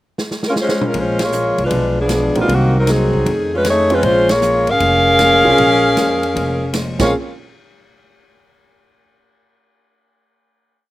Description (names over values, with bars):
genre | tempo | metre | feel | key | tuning
jazz, big band swing | 156 BPM | 4/4 | swing 67% on 8ths | Bb minor | A4 = 441 Hz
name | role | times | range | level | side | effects
swinging big-band drum kit | drums | 0.2-7.1 s | crash cymbal, hi-hat, kick drum, ride cymbal, snare drum, toms | -24 LUFS | right 1 dB | none
clear saxophone section | melody | 0.5-7.1 s | Eb3 to F5 | -14 LUFS | equal | none
vintage hollow-body jazz guitar | accompaniment | 0.9-7.1 s | F2 to Eb4 | -25 LUFS | left 2 dB | slapback echo
upright bass | bass | 0.9-7.1 s | F1 to F2 | -21 LUFS | equal | none
warm concert grand piano | accompaniment | 2.4-7.1 s | Bb3 to G#4 | -21 LUFS | right 4 dB | none
room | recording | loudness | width
little or no reverb | recorded outdoors, with no room sound | -13 LUFS | side -16 dB against mid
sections
0.0-0.9 pickup bar; 0.9-7.1 A section; 7.1-8.7 final hit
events
drum fill 0.2-0.9; band accent 1.1, 4.2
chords
0.0 Ab6; 0.9 Bbm7; 1.7 Bdim7; 2.5 Cm7b5; 3.3 F7alt; 4.0 Bbm7; 7.1 N.C.